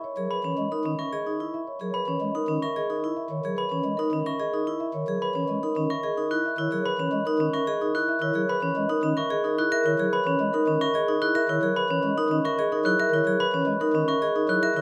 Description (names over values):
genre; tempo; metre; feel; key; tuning
classical, minimalist pattern music; 110 BPM; 3/4; straight; F# mixolydian; A4 = 440 Hz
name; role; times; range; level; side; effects
marimba with soft mallets; melody; 0.0-14.8 s; G#4 to E5; -30 LUFS; equal; none
pipe organ, stopped flute; accompaniment; 0.2-14.8 s; D#3 to G#3; -35 LUFS; equal; none
vibraphone with medium hard mallets; arpeggios; 0.2-14.8 s; C#4 to A#4; -31 LUFS; equal; none
glockenspiel with hard plastic mallets; arpeggios; 0.3-14.7 s; B5 to F#6; -31 LUFS; equal; none
room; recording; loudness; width
moderate recital hall reverb, RT60 1.5 s; close, detailed microphones; -26 LUFS; mono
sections
0.0-14.8 A section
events
none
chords
0.0 F#13sus4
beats
| 0.31 0.85 1.40 | 1.95 2.49 3.04 | 3.58 4.13 4.67 | 5.22 5.76 6.31 | 6.85 7.40 7.95 | 8.49 9.04 9.58 | 10.13 10.67 11.22 | 11.76 12.31 12.85 | 13.40 13.95 14.49